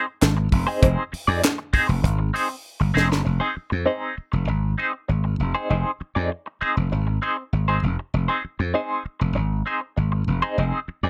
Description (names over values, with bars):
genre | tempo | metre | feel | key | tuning
funk | 98 BPM | 4/4 | straight | F dorian | A4 = 439 Hz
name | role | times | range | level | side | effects
clean electric guitar | accompaniment | 0.0-11.1 s | C4 to D5 | -26 LUFS | equal | wah, tremolo
slap bass | bass | 0.2-11.1 s | F1 to F2 | -24 LUFS | equal | none
tight funk drum kit | drums | 0.2-3.3 s | handclaps, hi-hat, kick drum, snare drum | -24 LUFS | equal | none
room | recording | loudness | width
little or no reverb | rough home demo mix | -23 LUFS | mono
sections
0.0-3.3 A section; 3.3-11.1 B section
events
drum fill 2.7-3.3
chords
0.0 Fm7